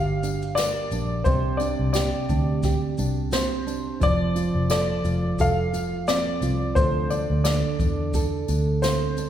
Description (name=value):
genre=acoustic pop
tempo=87 BPM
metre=4/4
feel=swing 55% on 16ths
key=F major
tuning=A4 = 440 Hz
part: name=warm upright piano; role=melody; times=0.0-9.3 s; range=C5 to F5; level=-27 LUFS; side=left 2 dB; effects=none
part: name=nylon-string guitar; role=accompaniment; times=0.0-9.3 s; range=G2 to A4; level=-27 LUFS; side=right 4 dB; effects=none
part: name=vintage muted fingered electric bass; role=bass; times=0.0-9.3 s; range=F1 to E2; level=-25 LUFS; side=equal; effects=none
part: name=jazz brush drum kit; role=drums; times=0.2-9.3 s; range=kick drum, shaker, snare drum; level=-27 LUFS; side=left 1 dB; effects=none
part: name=tambourine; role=percussion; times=0.2-9.3 s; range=none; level=-39 LUFS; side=left 6 dB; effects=none
room=wet concert hall reverb, RT60 2.0 s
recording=recorded in a church or concert hall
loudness=-21 LUFS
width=side -10 dB against mid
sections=0.0-9.3 A section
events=none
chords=0.0 Gm7; 1.3 Csus2; 4.0 F; 6.8 D5